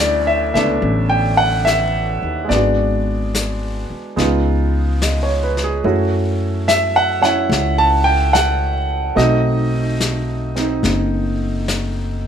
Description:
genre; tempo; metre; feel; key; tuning
jazz ballad; 72 BPM; 4/4; swing 68% on 8ths; unclear; A4 = 442 Hz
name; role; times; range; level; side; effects
clear baby grand piano; accompaniment; 0.0-12.3 s; D2 to A5; -17 LUFS; right 2 dB; none
upright bass; bass; 0.0-12.3 s; F#1 to F#2; -19 LUFS; left 1 dB; none
vintage brush drum kit; drums; 0.6-12.3 s; brushed snare drum, hi-hat, snare drum; -25 LUFS; left 3 dB; none
room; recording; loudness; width
moderate studio reverb, RT60 0.6 s; none; -15 LUFS; side -8 dB against mid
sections
0.0-12.3 A section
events
none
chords
0.0 Dmaj9; 2.5 G#m7b5; 4.2 C#7; 5.8 F#m7; 9.2 B7b9

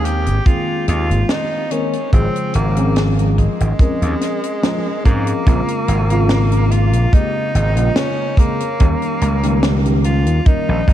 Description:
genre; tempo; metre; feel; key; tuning
vaporwave; 72 BPM; 4/4; swing 53% on 16ths; Bb dorian; A4 = 440 Hz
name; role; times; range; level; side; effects
bright tenor saxophone; melody; 0.0-10.9 s; Ab3 to G4; -22 LUFS; right 1 dB; vintage 12-bit sampler grit, tape echo
mellow FM electric piano; accompaniment; 0.0-10.9 s; Db3 to C5; -21 LUFS; left 2 dB; analog chorus, tape echo
gritty slap bass; bass; 0.0-10.9 s; Ab1 to Ab2; -16 LUFS; equal; overdrive
tight funk drum kit; drums; 0.1-10.9 s; hi-hat, snare drum; -24 LUFS; equal; none
kick drum; drums; 0.5-10.9 s; none; -12 LUFS; equal; none
room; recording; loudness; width
moderate lush hall reverb, RT60 3.1 s; dreamy mix soaked in reverb, cassette tape; -14 LUFS; side -12 dB against mid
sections
0.0-5.5 A section; 5.5-10.9 B section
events
none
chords
0.0 Abmaj9; 2.1 Dbmaj7/Ab; 5.5 Bbm9; 8.8 Eb7

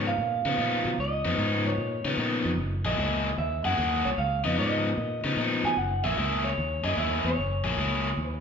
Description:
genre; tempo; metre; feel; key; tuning
blues; 150 BPM; 4/4; swing 68% on 8ths; Db mixolydian; A4 = 440 Hz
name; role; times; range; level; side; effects
electric guitar through a small old amp; melody; 0.0-8.4 s; Db5 to Ab5; -30 LUFS; right 1 dB; none
overdriven electric guitar; riff; 0.0-8.1 s; Db3 to Ab4; -28 LUFS; left 2 dB; spring reverb
fingered electric bass; bass; 0.0-8.4 s; Gb1 to Db3; -30 LUFS; right 1 dB; none
room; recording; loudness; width
wet large studio reverb, RT60 1.3 s; band playing live in one room, nothing above 7.8 kHz; -25 LUFS; side -6 dB against mid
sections
0.0-8.4 A section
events
none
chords
0.0 Db9; 2.6 Gb9; 4.2 Db9; 5.8 Gb9

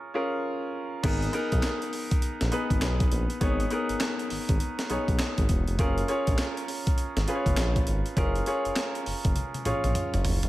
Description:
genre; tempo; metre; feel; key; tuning
R&B, new jack swing; 101 BPM; 4/4; swing 63% on 16ths; G# dorian; A4 = 439 Hz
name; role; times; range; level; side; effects
warm baby grand piano; accompaniment; 0.0-10.5 s; B3 to C#5; -29 LUFS; equal; none
smooth synth bass; bass; 1.0-10.5 s; E1 to B1; -29 LUFS; equal; none
breakbeat sampler-style drum kit; drums; 1.0-10.5 s; crash cymbal, handclaps, hi-hat, kick drum, snare drum, toms; -28 LUFS; equal; gated reverb
room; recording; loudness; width
digital ambience; none; -25 LUFS; side -16 dB against mid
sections
0.0-1.0 A section; 1.0-10.5 B section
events
break 0.0-1.0; drum fill 9.4-10.5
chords
0.0 F#maj7 (rootless); 1.0 G#madd9; 5.8 F#maj7

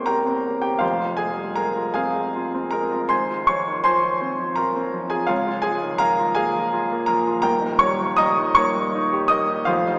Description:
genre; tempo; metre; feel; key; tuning
classical, romantic character piece for solo piano; 81 BPM; 3/4; rubato; F minor; A4 = 440 Hz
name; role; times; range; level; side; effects
warm concert grand piano; solo; 0.0-10.0 s; Eb1 to Eb6; -22 LUFS; equal; none
room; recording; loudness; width
wet church reverb, RT60 2.9 s; small speaker sound; -22 LUFS; mono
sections
0.0-10.0 A section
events
none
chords
0.0 C7/E; 0.8 Fm; 3.1 Fm/Ab; 5.3 Bbm7/Db; 7.5 Eb7

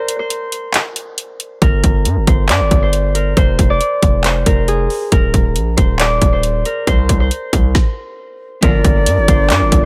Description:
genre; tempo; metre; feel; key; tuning
hip hop, trap; 137 BPM; 4/4; half-time; G phrygian; A4 = 435 Hz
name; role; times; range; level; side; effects
Celtic harp; melody; 0.0-9.9 s; Ab4 to D5; -22 LUFS; equal; low-pass filter, digital delay
trap drum kit; drums; 0.1-9.8 s; handclaps, hi-hat, kick drum, snare drum; -16 LUFS; equal; none
distorted 808-style bass; bass; 1.6-9.9 s; Eb1 to G2; -18 LUFS; equal; distortion
concert flute; second line; 8.6-9.9 s; D5; -20 LUFS; equal; digital delay
deep dark ambient pad; sustained chords; 9.1-9.9 s; G3 to Bb4; -25 LUFS; equal; chorus, built-in reverb
warm symphonic string section; stabs; 8.6-8.8 s; Bb2 to F3; -25 LUFS; equal; digital delay
room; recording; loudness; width
little or no reverb; none; -14 LUFS; mono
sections
0.0-8.6 A section; 8.6-9.9 B section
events
break 0.0-1.6; kick muted 0.7-1.6; stop 7.7-8.6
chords
0.0 N.C.; 1.6 Gm; 3.4 Fm; 5.1 Eb5; 6.9 N.C.; 8.6 Gm7

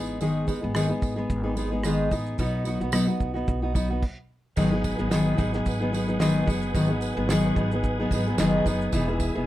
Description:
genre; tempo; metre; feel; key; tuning
acoustic pop; 110 BPM; 4/4; swing 55% on 16ths; unclear; A4 = 440 Hz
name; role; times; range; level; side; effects
fingerpicked steel-string acoustic guitar; accompaniment; 0.0-9.5 s; G#2 to G#4; -24 LUFS; left 1 dB; none
upright bass; bass; 0.0-9.5 s; E1 to B1; -30 LUFS; right 1 dB; none
cloth-damped thuddy drum kit; drums; 0.2-9.3 s; crash cymbal, kick drum, rim click, shaker, snare drum; -28 LUFS; right 1 dB; none
tambourine; percussion; 0.2-9.3 s; none; -41 LUFS; right 8 dB; none
tonewheel organ; sustained chords; 4.6-9.5 s; B4 to D#6; -34 LUFS; right 2 dB; chorus vibrato, stopped rotary speaker
room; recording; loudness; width
light reverb; dark, warm production; -23 LUFS; side -14 dB against mid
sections
0.0-4.6 A section; 4.6-9.5 B section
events
stop 4.0-4.6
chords
0.0 G#m; 2.4 B; 4.6 G#m7; 8.9 Emaj7

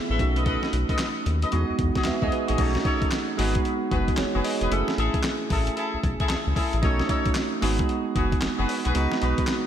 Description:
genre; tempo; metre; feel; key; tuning
R&B, new jack swing; 113 BPM; 4/4; swing 63% on 16ths; unclear; A4 = 445 Hz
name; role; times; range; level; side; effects
bell-like tine electric piano; accompaniment; 0.0-9.7 s; G#3 to E5; -28 LUFS; right 4 dB; slapback echo
warm horn section; stabs; 0.1-9.4 s; D#4 to E5; -28 LUFS; left 2 dB; slapback echo
round analog bass; bass; 0.1-9.3 s; E1 to E2; -26 LUFS; left 1 dB; none
dusty soul sampler-style drum kit; drums; 0.2-9.6 s; crash cymbal, handclaps, hi-hat, kick drum, snare drum; -27 LUFS; left 1 dB; overdrive
room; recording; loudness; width
moderate lush hall reverb, RT60 2.5 s; big arena sound; -22 LUFS; side -10 dB against mid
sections
0.0-2.6 A section; 2.6-9.7 B section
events
none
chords
0.2 B7; 1.5 Emaj9; 2.6 B9; 3.4 G#m7; 4.7 F#m9; 6.8 B9; 7.6 G#m7; 9.0 C#9sus4

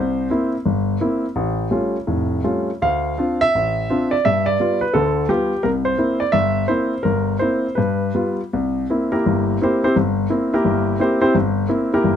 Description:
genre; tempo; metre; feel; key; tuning
solo jazz; 170 BPM; 4/4; swing 63% on 8ths, rubato; C mixolydian; A4 = 440 Hz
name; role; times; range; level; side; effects
warm grand piano; solo; 0.0-12.2 s; E#1 to F5; -17 LUFS; equal; none
room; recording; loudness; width
light reverb; close, detailed microphones; -17 LUFS; side -9 dB against mid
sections
0.0-8.5 A section; 8.5-12.2 B section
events
grand piano solo 8.5-12.2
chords
0.0 C7; 1.4 Aaug7; 2.8 Dm7; 4.3 G7; 5.6 C7; 7.8 G7; 8.5 C7

